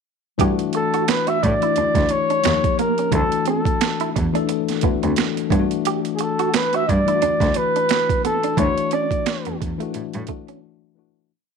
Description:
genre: R&B, neo-soul.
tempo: 88 BPM.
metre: 4/4.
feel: swing 58% on 16ths.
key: D major.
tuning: A4 = 440 Hz.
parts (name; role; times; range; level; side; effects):
electric guitar through a small old amp; second line; 0.4-10.6 s; A3 to G4; -26 LUFS; right 16 dB; tremolo.
tine electric piano; accompaniment; 0.4-11.3 s; E3 to A4; -24 LUFS; left 14 dB; medium stereo tremolo.
warm cello; bass; 0.4-10.2 s; D2 to A2; -24 LUFS; right 1 dB; transformer saturation.
boom bap sampler-style drum kit; drums; 0.4-10.6 s; finger snaps, hi-hat, kick drum, snare drum; -23 LUFS; right 6 dB; overdrive.
warm flugelhorn; melody; 0.8-9.6 s; G#4 to E5; -20 LUFS; equal; slapback echo.
room: digital ambience.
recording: 1960s-style stereo with parts hard left and right.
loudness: -18 LUFS.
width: side -6 dB against mid.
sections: 0.4-11.3 verse.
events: fade-out 8.6-11.3; break 10.6-11.3.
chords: 0.4 Gsus2 (rootless); 2.4 Eb9; 3.1 Dadd9; 5.5 Gmaj9 (rootless); 8.6 Dadd9.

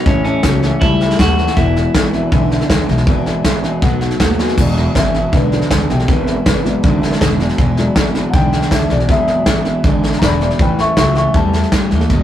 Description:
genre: rockabilly.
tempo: 160 BPM.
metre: 4/4.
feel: straight.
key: E mixolydian.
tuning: A4 = 440 Hz.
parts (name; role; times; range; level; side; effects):
clean electric guitar; melody; 0.0-2.3 s; C#4 to F#4; -19 LUFS; left 3 dB; analog delay.
picked steel-string acoustic guitar; accompaniment; 0.0-12.2 s; E2 to F#4; -25 LUFS; left 1 dB; none.
electric guitar through a small old amp; riff; 0.0-12.2 s; E2 to A3; -18 LUFS; right 1 dB; none.
dark upright piano; accompaniment; 0.1-11.7 s; F#3 to C#6; -21 LUFS; left 2 dB; none.
upright bass; bass; 0.1-12.2 s; E1 to G2; -19 LUFS; equal; none.
soft brush drum kit; drums; 0.1-12.2 s; crash cymbal, hi-hat, kick drum, snare drum; -16 LUFS; equal; none.
room: moderate studio reverb, RT60 0.6 s.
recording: rough rehearsal-room recording, tube saturation.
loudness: -12 LUFS.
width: side -11 dB against mid.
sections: 0.0-4.6 A section; 4.6-12.2 B section.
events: upright piano solo 4.6-12.2.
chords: 0.1 A7; 1.6 E7; 3.8 B7; 4.6 E7; 10.6 A7.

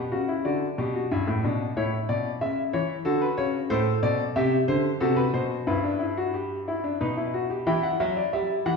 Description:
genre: classical, baroque-style 3-part fugue for grand piano.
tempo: 91 BPM.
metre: 3/4.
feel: straight.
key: E minor from 3.7 s.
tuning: A4 = 439 Hz.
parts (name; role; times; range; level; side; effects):
clear grand piano; solo; 0.0-8.8 s; G2 to G5; -23 LUFS; left 1 dB; none.
room: wet recital hall reverb, RT60 1.4 s.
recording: heard from further back in the room.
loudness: -23 LUFS.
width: side -4 dB against mid.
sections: 0.0-7.7 A section; 7.7-8.8 B section.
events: none.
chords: 0.0 Bm; 1.1 Em7/G; 1.8 A; 3.0 D; 3.7 F#dim/A; 5.7 Em/G; 7.0 B; 7.7 Em.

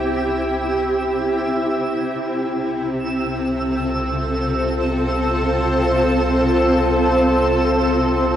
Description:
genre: ambient.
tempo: free time.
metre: none.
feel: none.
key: unclear.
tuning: A4 = 440 Hz.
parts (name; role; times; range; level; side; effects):
shimmering ambient pad; sustained chords; 0.0-8.4 s; C3 to G5; -18 LUFS; equal; chorus, built-in reverb.
round analog bass; bass; 0.0-8.4 s; C2; -27 LUFS; equal; none.
twinkling granular texture; texture; 0.0-8.4 s; E6; -28 LUFS; right 1 dB; built-in reverb.
room: wet studio reverb, RT60 0.7 s.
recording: home recording on cassette.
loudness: -17 LUFS.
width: side -10 dB against mid.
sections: 0.0-8.4 A section.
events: none.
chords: 0.0 C; 2.0 F/C.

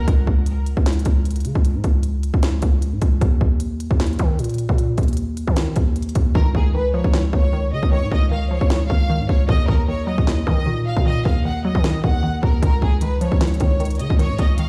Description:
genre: hip hop, trap.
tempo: 153 BPM.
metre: 4/4.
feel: half-time.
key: unclear.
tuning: A4 = 440 Hz.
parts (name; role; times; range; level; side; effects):
bright studio violin section; melody; 0.0-0.1, 6.3-14.7 s; Ab4 to Gb5; -30 LUFS; equal; delay.
growling 808-style bass; bass; 0.0-14.7 s; Db2 to Eb3; -23 LUFS; equal; none.
trap drum kit; drums; 0.1-14.7 s; hi-hat, kick drum, snare drum; -21 LUFS; equal; none.
hollow square pluck; accompaniment; 6.4-14.7 s; Eb3 to Gb3; -28 LUFS; equal; chorus.
room: little or no reverb.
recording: played on a big sound system in a bare room, large studio reverb.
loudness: -19 LUFS.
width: mono.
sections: 0.0-14.7 A section.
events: break 0.1-6.4; hi-hats muted 6.4-12.6.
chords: 0.1 Db5; 3.2 Eb5; 6.4 Dbadd9; 9.5 Ebm; 12.6 Dbadd9.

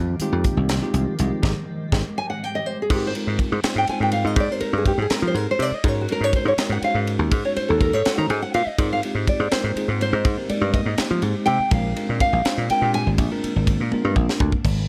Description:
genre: electric jazz fusion.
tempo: 82 BPM (dotted quarters).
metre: 6/8.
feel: straight.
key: unclear.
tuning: A4 = 441 Hz.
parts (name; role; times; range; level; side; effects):
nylon-string guitar; melody; 0.0-13.1 s; Gb4 to Bb5; -26 LUFS; equal; slapback echo.
granular cloud pad; sustained chords; 0.1-2.9, 9.7-14.6 s; Eb3 to G4; -35 LUFS; equal; none.
dry thumbed slap bass; bass; 0.0-14.9 s; Ab1 to F3; -25 LUFS; equal; none.
bell-like tine electric piano; accompaniment; 0.2-14.5 s; Ab3 to Db5; -30 LUFS; equal; none.
crisp fusion drum kit; drums; 0.2-14.8 s; crash cymbal, hi-hat, kick drum, ride cymbal, snare drum, toms; -27 LUFS; equal; none.
room: light reverb.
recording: none.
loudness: -22 LUFS.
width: mono.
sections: 0.0-2.9 A section; 2.9-14.7 A section.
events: nylon-string guitar solo 0.0-14.7; band accent 1.4-2.9; drum fill 2.2-2.9, 13.9-14.7.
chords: 0.0 Fm9; 1.4 Abmaj7; 2.9 Bb9sus4/Ab; 4.4 Abmaj7; 5.9 Gb69; 8.8 Bb9sus4/Ab; 10.3 Abmaj7; 11.7 Bb9.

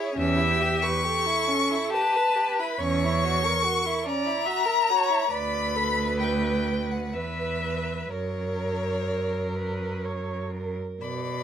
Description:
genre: classical, slow romantic movement for string quartet.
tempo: 60-73 BPM.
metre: 3/4.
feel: rubato.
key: unclear.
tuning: A4 = 440 Hz.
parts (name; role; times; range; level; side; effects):
warm violin; melody; 0.0-11.4 s; C#5 to C#6; -26 LUFS; left 4 dB; none.
rich violin; second line; 0.0-11.4 s; C#4 to D5; -31 LUFS; equal; none.
warm viola; accompaniment; 0.0-11.0 s; G4 to E5; -31 LUFS; right 4 dB; none.
clear cello; bass; 0.2-11.4 s; D2 to B2; -29 LUFS; right 3 dB; none.
room: light reverb.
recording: none.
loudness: -23 LUFS.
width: side -9 dB against mid.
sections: 0.0-11.0 A section.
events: none.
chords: 0.2 C#m7b5/E; 2.8 F#7/E; 5.3 Bm/D; 7.1 E5; 8.1 F#.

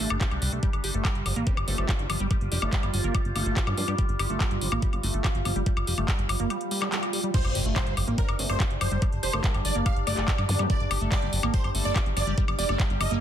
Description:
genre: psychedelic trance.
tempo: 143 BPM.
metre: 4/4.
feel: straight.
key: G minor.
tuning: A4 = 441 Hz.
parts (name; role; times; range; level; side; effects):
overtone-sweeping drone; sustained chords; 0.0-13.2 s; G3 to F4; -34 LUFS; right 1 dB; chorus, built-in reverb, sidechain pumping.
liquid acid bass; riff; 0.0-13.2 s; F3 to G4; -34 LUFS; moving between left 5 dB and right 4 dB; chorus, auto-pan, sidechain pumping, ping-pong delay.
plucky analog bass; bass; 0.0-13.2 s; F1 to G2; -28 LUFS; equal; tube saturation.
drum and bass drum kit; drums; 0.0-13.2 s; crash cymbal, handclaps, hi-hat, woodblock; -31 LUFS; left 2 dB; none.
electronic kick drum; drums; 0.2-12.9 s; none; -26 LUFS; equal; none.
formant-sweep wobble bass; second line; 1.5-3.8, 8.2-10.4 s; G3 to F4; -42 LUFS; left 2 dB; chorus, sidechain pumping, high-pass filter, ping-pong delay.
swell, impact and zap; sound effects; 6.6-10.6 s; none; -34 LUFS; left 1 dB; none.
supersaw stab; melody; 7.3-13.1 s; Bb4 to F5; -32 LUFS; right 3 dB; phaser, sidechain pumping, ping-pong delay.
room: light reverb.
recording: dense, heavily limited modern master.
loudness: -24 LUFS.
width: side -10 dB against mid.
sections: 0.0-7.3 A section; 7.3-13.2 B section.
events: swell 6.6-7.3; drop 7.3-13.2; impact 7.3-9.0.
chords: 0.0 G5.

